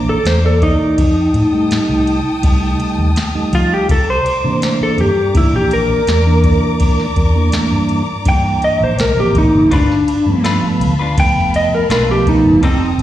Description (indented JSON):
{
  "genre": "straight-eighth soul blues",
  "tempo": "82 BPM",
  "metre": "4/4",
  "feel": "straight",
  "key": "unclear",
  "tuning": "A4 = 440 Hz",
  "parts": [
    { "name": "electric slide guitar", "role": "melody", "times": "0.0-13.0 s", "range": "C4 to G5", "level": "-15 LUFS", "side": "equal", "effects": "slapback echo" },
    { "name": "mellow tonewheel organ", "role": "accompaniment", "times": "0.0-12.6 s", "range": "E3 to D5", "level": "-18 LUFS", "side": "right 3 dB", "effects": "slow rotary speaker, slapback echo" },
    { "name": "warm studio string section", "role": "sustained chords", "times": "0.0-13.0 s", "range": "D5 to Eb6", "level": "-25 LUFS", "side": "left 3 dB", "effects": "none" },
    { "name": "vintage muted fingered electric bass", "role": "bass", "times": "0.0-13.0 s", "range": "F1 to F3", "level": "-17 LUFS", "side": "equal", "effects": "none" },
    { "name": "soft vintage rhythm box", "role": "drums", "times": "0.3-13.0 s", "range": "kick drum, ride cymbal, snare drum", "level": "-18 LUFS", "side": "equal", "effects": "none" },
    { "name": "clean electric guitar", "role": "stabs", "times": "9.7-12.9 s", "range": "G3 to B4", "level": "-22 LUFS", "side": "left 4 dB", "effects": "slapback echo, tape echo" }
  ],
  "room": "light reverb",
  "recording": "live gig heard through the venue's PA, recital hall reverb",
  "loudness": "-11 LUFS",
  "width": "side -13 dB against mid",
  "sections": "0.0-13.0 A section",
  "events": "electric slide guitar solo 0.0-13.0",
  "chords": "0.0 C9 (rootless); 1.0 F9; 3.9 C9; 9.7 G9"
}